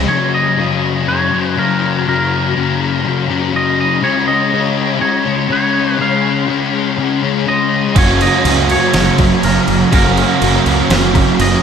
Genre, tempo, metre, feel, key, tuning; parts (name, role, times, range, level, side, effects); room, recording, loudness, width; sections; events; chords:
rock, shoegaze and dream pop; 122 BPM; 4/4; straight; F# major; A4 = 439 Hz
twangy electric guitar; melody; 0.0-11.6 s; A#4 to E#5; -18 LUFS; right 1 dB; spring reverb, tape echo
biting overdriven guitar; riff; 0.0-0.1, 8.0-11.6 s; F#2 to F#4; -16 LUFS; right 9 dB; reverse reverb
thick fuzz guitar; riff; 0.0-11.6 s; F#2 to C#4; -15 LUFS; left 6 dB; distortion, ensemble chorus
fuzz fingered electric bass; bass; 0.0, 8.0-11.5 s; F#1 to F#2; -18 LUFS; equal; overdrive
detuned 8-bit digital drum machine; drums; 8.0-11.5 s; crash cymbal, kick drum, snare drum; -17 LUFS; right 1 dB
wet huge ambient reverb, RT60 9.2 s; dreamy mix soaked in reverb; -12 LUFS; side -7 dB against mid
0.1-11.6 A section
0.1 F#; 4.0 C#; 8.0 F#